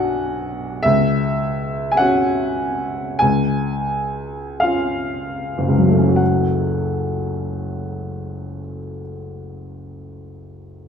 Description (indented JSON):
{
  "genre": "classical, romantic nocturne for solo piano",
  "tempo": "36-54 BPM",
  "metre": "4/4",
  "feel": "rubato",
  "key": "F# minor",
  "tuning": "A4 = 440 Hz",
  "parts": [
    { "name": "clear upright piano", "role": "solo", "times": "0.0-10.9 s", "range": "F#1 to G#5", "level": "-18 LUFS", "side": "left 1 dB", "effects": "none" }
  ],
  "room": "moderate recital hall reverb, RT60 1.4 s",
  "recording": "none",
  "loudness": "-17 LUFS",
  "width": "side -7 dB against mid",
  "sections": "0.0-6.2 A section; 6.2-10.9 B section",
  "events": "slowing down 0.0-6.2",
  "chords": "0.0 G#m7b5/B; 0.8 F#5/C#; 3.2 C#; 6.2 F#m",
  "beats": "| 0.84 2.00 3.21 4.62 | 6.19 7.63 9.07 10.50"
}